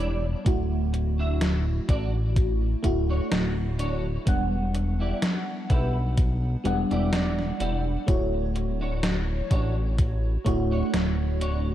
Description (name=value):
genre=vaporwave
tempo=63 BPM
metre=4/4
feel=swing 55% on 16ths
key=unclear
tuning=A4 = 441 Hz
part: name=FM electric piano with soft pad layer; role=accompaniment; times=0.0-11.7 s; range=G3 to F#5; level=-29 LUFS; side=equal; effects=phaser, wide subtle chorus, vintage 12-bit sampler grit, ping-pong delay
part: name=clean electric guitar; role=riff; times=0.0-11.7 s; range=D4 to F#5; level=-36 LUFS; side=right 2 dB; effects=ensemble chorus, vintage 12-bit sampler grit, low-pass filter, ping-pong delay
part: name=chorused synth bass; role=bass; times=0.0-11.7 s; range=D1 to B1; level=-26 LUFS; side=equal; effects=none
part: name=electronic kick drum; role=drums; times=0.5-10.7 s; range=none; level=-24 LUFS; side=equal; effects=overdrive
part: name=gated 80s digital drum machine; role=drums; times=0.5-11.6 s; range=hi-hat, snare drum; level=-30 LUFS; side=equal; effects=gated reverb, gated reverb snare, overdrive
room=light reverb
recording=cassette tape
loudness=-23 LUFS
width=side -12 dB against mid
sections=0.0-11.7 A section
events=clean electric guitar fill 0.0-0.5, 6.7-8.1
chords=0.5 Dmaj7; 4.3 Em7; 8.1 Dmaj7